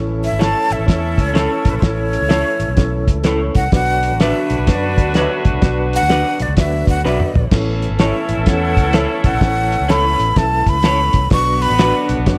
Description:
uptempo 1960s-style soul; 126 BPM; 4/4; swing 64% on 8ths; A major; A4 = 442 Hz
mellow horn section; second line; 0.0-12.4 s; B3 to B4; -27 LUFS; equal
mellow reed electric piano; accompaniment; 0.0-12.4 s; C#4 to E5; -26 LUFS; equal; fast tremolo
tonewheel organ; sustained chords; 0.0-12.4 s; D3 to A4; -31 LUFS; equal
fingered electric bass; bass; 0.0-12.4 s; G#1 to F#2; -23 LUFS; equal
breathy jazz flute; melody; 0.2-12.1 s; A4 to C#6; -22 LUFS; equal
cloth-damped thuddy drum kit; drums; 0.2-12.4 s; crash cymbal, hi-hat, kick drum, snare drum, toms; -18 LUFS; equal
electric guitar through a small old amp; stabs; 0.4-11.9 s; E4 to D5; -27 LUFS; equal; spring reverb, slapback echo
small room ambience; -16 LUFS; mono
0.0-12.4 A section
flute solo 0.0-12.4; drum fill 7.0-7.5
0.0 A; 3.7 Bm; 7.5 A; 11.3 Bm

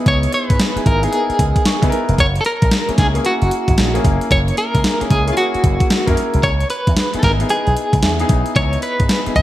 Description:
R&B, new jack swing; 113 BPM; 4/4; swing 64% on 16ths; C# dorian; A4 = 440 Hz
warm concert grand piano; accompaniment; 0.0-9.4 s; A#3 to C#6; -22 LUFS; left 1 dB; wide subtle chorus
clean electric guitar; melody; 0.1-9.4 s; E#4 to E5; -19 LUFS; equal; tremolo
slap bass with an envelope filter; bass; 0.1-9.4 s; E#1 to C#3; -18 LUFS; equal
clean 12-bit digital drum machine; drums; 0.1-9.4 s; hi-hat, kick drum, snare drum; -17 LUFS; equal; overdrive, gated reverb
light reverb, digital ambience; bright 1980s-style digital production; -14 LUFS; side -14 dB against mid
0.0-9.4 A section
grand piano fill 1.4-2.2
0.0 C#m7; 2.2 F#7; 6.4 C#m7

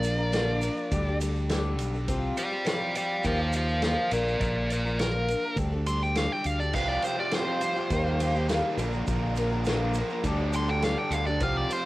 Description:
folk rock and heartland rock; 103 BPM; 4/4; straight; A4 = 440 Hz
dark smooth lead guitar; melody; 0.0-11.9 s; Bb4 to C6; -30 LUFS; equal; overdrive, cassette tape
picked twelve-string acoustic guitar; accompaniment; 0.0-11.9 s; Bb2 to Bb4; -31 LUFS; left 1 dB; cassette tape
modern bright fingered electric bass; bass; 0.0-11.6 s; Bb1 to Eb2; -29 LUFS; equal
natural country drum kit; drums; 0.0-11.8 s; crash cymbal, kick drum, ride cymbal, snare drum; -33 LUFS; equal; cassette tape
tube shaker; percussion; 0.0-11.8 s; -46 LUFS; right 5 dB
raw garage guitar; riff; 6.7-11.9 s; Bb2 to Bb4; -32 LUFS; right 1 dB; overdrive, cassette tape
small room ambience; home recording on cassette; -25 LUFS; side -18 dB against mid
0.0-11.9 A section
lead electric guitar solo 0.0-11.9
0.0 Bb; 0.9 Dsus4; 2.1 Csus4; 3.2 Ebadd9; 4.1 Bb; 5.6 Dsus4; 6.7 Csus4; 7.9 Ebadd9; 8.8 Bb; 10.2 Dsus4

